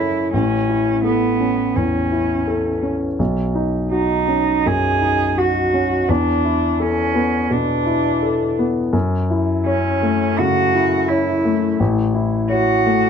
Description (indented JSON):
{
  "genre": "neoclassical piano and strings",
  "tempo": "84 BPM",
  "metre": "4/4",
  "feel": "rubato",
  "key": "unclear",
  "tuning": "A4 = 440 Hz",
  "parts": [
    { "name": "muted cello", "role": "second line", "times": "0.0-13.1 s", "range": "B3 to G#4", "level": "-19 LUFS", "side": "right 4 dB", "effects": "none" },
    { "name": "warm grand piano", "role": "accompaniment", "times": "0.0-13.1 s", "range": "A1 to C#5", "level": "-18 LUFS", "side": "left 2 dB", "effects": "none" }
  ],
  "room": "light reverb",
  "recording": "dark, warm production",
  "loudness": "-16 LUFS",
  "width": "side -7 dB against mid",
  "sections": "0.0-13.1 A section",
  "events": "none",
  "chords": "0.3 A; 3.2 Badd9; 6.1 E7sus4; 8.9 F#m7; 11.8 A"
}